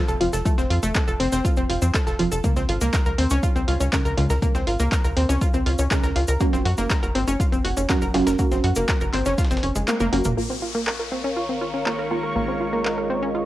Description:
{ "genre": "melodic techno", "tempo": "121 BPM", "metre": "4/4", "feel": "straight", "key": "Bb minor", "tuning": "A4 = 439 Hz", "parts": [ { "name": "filtered dub chord stab", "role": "stabs", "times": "0.0-13.5 s", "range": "Db3 to Bb4", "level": "-26 LUFS", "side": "right 2 dB", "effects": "phaser, wide subtle chorus, sidechain pumping, cassette tape, analog delay" }, { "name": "analog pluck", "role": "arpeggios", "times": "0.1-13.4 s", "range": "Ab3 to Bb4", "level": "-25 LUFS", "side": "equal", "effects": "chorus, sidechain pumping, cassette tape, analog delay" }, { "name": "tight sequencer bass", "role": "bass", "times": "0.1-13.5 s", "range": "F1 to Gb2", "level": "-24 LUFS", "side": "equal", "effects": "sidechain pumping" }, { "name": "punchy analog drum machine", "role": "drums", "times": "0.1-13.0 s", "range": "handclaps, hi-hat, toms", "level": "-29 LUFS", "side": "equal", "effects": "cassette tape" }, { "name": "cabasa", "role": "percussion", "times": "0.1-10.3 s", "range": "none", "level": "-36 LUFS", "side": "left 1 dB", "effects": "none" }, { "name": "dusty soul sampler-style drum kit", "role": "drums", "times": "0.2-10.4 s", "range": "hi-hat, snare drum", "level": "-39 LUFS", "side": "equal", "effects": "none" }, { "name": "electronic kick drum", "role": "drums", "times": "0.5-9.5 s", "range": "none", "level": "-23 LUFS", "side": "equal", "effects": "overdrive, cassette tape" }, { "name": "sweeping resonant pad", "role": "sustained chords", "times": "10.7-13.5 s", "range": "Bb4 to Db6", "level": "-28 LUFS", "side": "equal", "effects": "chorus, vintage 12-bit sampler grit, sidechain pumping, cassette tape" }, { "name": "downlifter", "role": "sound effects", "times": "10.4-13.5 s", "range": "none", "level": "-34 LUFS", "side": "left 2 dB", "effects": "none" }, { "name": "deep dark ambient pad", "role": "texture", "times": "11.5-13.5 s", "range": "Eb4 to F5", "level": "-30 LUFS", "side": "equal", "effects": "chorus, built-in reverb, sidechain pumping, cassette tape" } ], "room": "light reverb", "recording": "home recording on cassette", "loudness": "-19 LUFS", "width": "side -15 dB against mid", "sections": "0.0-10.4 A section; 10.4-13.5 B section", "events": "kick drops out 9.9-10.4; drum fill 9.9-10.4; band accent 9.9", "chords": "0.0 F; 2.4 Db; 6.4 Gb; 10.4 Bbm" }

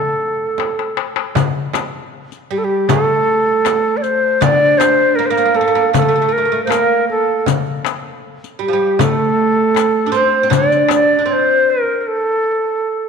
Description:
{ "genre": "Arabic maqam ensemble", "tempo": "79 BPM", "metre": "4/4", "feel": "straight", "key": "A maqam kurd", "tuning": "A4 = 440 Hz", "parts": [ { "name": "breathy ney", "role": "melody", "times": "0.0-13.1 s", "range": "G4 to D5", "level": "-14 LUFS", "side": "left 1 dB", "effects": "none" }, { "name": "oud", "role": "second line", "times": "0.0-11.9 s", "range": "F3 to D4", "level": "-19 LUFS", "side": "right 8 dB", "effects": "slapback echo" }, { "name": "darbuka", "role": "percussion", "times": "0.6-11.6 s", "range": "none", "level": "-20 LUFS", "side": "left 10 dB", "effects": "none" }, { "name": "frame drum", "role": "percussion", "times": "0.6-11.1 s", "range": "none", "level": "-25 LUFS", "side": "right 8 dB", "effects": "none" }, { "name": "riq", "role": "percussion", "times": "1.4-11.1 s", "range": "none", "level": "-27 LUFS", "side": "left 11 dB", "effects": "none" } ], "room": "wet echo chamber reverb, RT60 2.4 s", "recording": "1960s-style stereo with parts hard left and right", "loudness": "-13 LUFS", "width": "side -6 dB against mid", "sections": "0.0-1.4 A section; 1.4-13.1 B section", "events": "drum fill 0.6-1.4; stop 12.0-13.1", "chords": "none" }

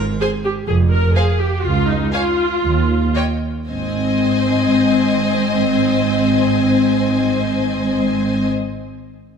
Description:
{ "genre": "cinematic", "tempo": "110-127 BPM", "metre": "4/4", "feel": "straight", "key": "Ab major", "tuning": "A4 = 441 Hz", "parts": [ { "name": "rich studio viola section", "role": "accompaniment", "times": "0.0-8.5 s", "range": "C4 to Bb4", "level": "-18 LUFS", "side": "left 2 dB", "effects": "none" }, { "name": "rich studio double bass section", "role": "bass", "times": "0.0-8.5 s", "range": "F1 to Eb2", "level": "-23 LUFS", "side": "right 4 dB", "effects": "none" }, { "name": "warm studio cello section", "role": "bass", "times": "0.0-8.5 s", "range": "Db2 to Ab2", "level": "-20 LUFS", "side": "right 2 dB", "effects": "none" }, { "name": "clear studio violin section", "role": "melody", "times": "0.2-8.5 s", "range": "G5 to Ab5", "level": "-29 LUFS", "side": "left 3 dB", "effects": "none" }, { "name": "rich studio violin section", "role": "second line", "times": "0.2-8.5 s", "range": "C5 to F5", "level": "-23 LUFS", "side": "left 3 dB", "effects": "none" } ], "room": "wet scoring stage reverb, RT60 1.9 s", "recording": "minimal, uncompressed stereo recording", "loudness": "-15 LUFS", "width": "side -6 dB against mid", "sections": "0.0-3.7 A section; 3.7-8.1 B section", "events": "slowing down 0.0-3.7", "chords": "0.0 N.C.; 0.7 Fm; 1.6 Db; 2.6 N.C.; 3.7 Ab" }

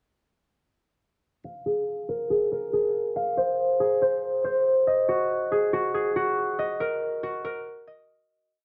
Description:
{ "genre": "hip hop", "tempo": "140 BPM", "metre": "4/4", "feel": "half-time", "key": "unclear", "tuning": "A4 = 441 Hz", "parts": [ { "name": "concert harp", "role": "solo", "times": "1.4-8.6 s", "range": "Gb4 to F5", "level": "-26 LUFS", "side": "equal", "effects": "low-pass filter, digital delay" } ], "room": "moderate concert hall reverb, RT60 2.0 s, small room reverb", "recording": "none", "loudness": "-26 LUFS", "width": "mono", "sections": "1.4-8.3 breakdown", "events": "filter sweep on harp 1.4-8.3; fade-out 6.6-8.3", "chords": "none" }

